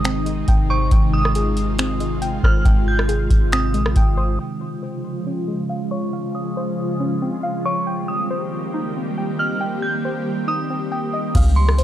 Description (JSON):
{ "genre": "hip hop, atmospheric cloud-rap", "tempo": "138 BPM", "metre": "4/4", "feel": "half-time", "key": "Ab major", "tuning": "A4 = 440 Hz", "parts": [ { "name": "ethereal airy pad", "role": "sustained chords", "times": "0.0-11.8 s", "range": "C3 to G4", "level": "-24 LUFS", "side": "equal", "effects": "ensemble chorus, built-in reverb, sidechain pumping, low-pass filter" }, { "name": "soft round pluck", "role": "arpeggios", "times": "0.0-11.8 s", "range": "Ab3 to G5", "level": "-28 LUFS", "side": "left 1 dB", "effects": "chorus, low-pass filter, tape echo" }, { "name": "soft 808-style bass", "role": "bass", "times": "0.0-4.4, 11.3-11.8 s", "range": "Ab1 to Db2", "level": "-19 LUFS", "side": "equal", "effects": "none" }, { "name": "booming analog drum machine", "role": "drums", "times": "0.0-4.1, 11.3-11.8 s", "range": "crash cymbal, finger snaps, hi-hat, kick drum, rim click", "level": "-19 LUFS", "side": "equal", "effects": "none" }, { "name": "dark detuned synth bell", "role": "melody", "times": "0.7-11.8 s", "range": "C6 to G6", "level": "-27 LUFS", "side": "right 1 dB", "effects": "chorus, low-pass filter, tape echo" } ], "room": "digital ambience", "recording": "dry, gritty hardware recording, transformer saturation", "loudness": "-18 LUFS", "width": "side -12 dB against mid", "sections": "0.0-4.4 A section; 4.4-11.3 B section", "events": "filter sweep 4.4-11.3", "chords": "0.0 Abmaj7; 4.4 Dbmaj7; 7.9 Eb6" }